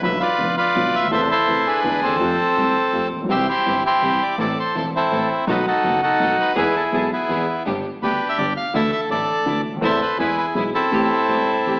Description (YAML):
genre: tango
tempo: 165 BPM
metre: 3/4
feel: rubato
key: A minor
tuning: A4 = 440 Hz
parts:
  - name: bandoneon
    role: melody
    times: 0.0-11.8 s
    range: B3 to F5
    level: -18 LUFS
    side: equal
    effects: slapback echo
  - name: dark grand piano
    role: accompaniment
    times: 0.0-11.8 s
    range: E1 to A4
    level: -24 LUFS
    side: equal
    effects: none
  - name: clear double bass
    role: bass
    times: 0.0-10.7 s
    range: E1 to F2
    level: -30 LUFS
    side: equal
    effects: none
  - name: rich chamber string section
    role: stabs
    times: 3.3-11.8 s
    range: G#3 to A4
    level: -28 LUFS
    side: equal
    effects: none
room: moderate recital hall reverb, RT60 1.4 s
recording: AM radio sound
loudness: -17 LUFS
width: side -28 dB against mid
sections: 0.0-11.8 A section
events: none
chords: 0.0 Bdim; 1.1 Am/E; 1.8 E7; 2.2 Fadd9; 3.3 C; 4.4 Am; 5.5 B7; 6.6 E; 7.7 G; 8.7 Dsus2; 9.8 Am/E; 10.2 E; 10.9 Am7